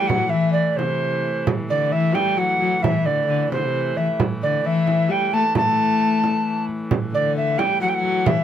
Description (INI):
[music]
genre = medieval dance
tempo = 88 BPM (dotted quarters)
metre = 6/8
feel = straight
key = A dorian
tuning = A4 = 440 Hz
[part]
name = alto recorder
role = melody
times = 0.0-8.4 s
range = C5 to A5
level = -21 LUFS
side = right 2 dB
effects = none
[part]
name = rich viola da gamba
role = second line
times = 0.0-8.4 s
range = C3 to A3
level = -22 LUFS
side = left 4 dB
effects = none
[part]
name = rich hurdy-gurdy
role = drone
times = 0.0-8.4 s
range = A2 to E3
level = -30 LUFS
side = equal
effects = none
[part]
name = frame drum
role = percussion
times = 0.1-8.4 s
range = none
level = -23 LUFS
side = right 4 dB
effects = none
[sound]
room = moderate booth ambience, RT60 0.2 s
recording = none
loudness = -18 LUFS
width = side -10 dB against mid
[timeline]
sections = 0.0-6.9 A section; 6.9-8.4 A section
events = none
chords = none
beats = | 0.10 0.78 | 1.47 2.15 | 2.83 3.51 | 4.19 4.87 | 5.55 6.23 | 6.91 7.58 | 8.26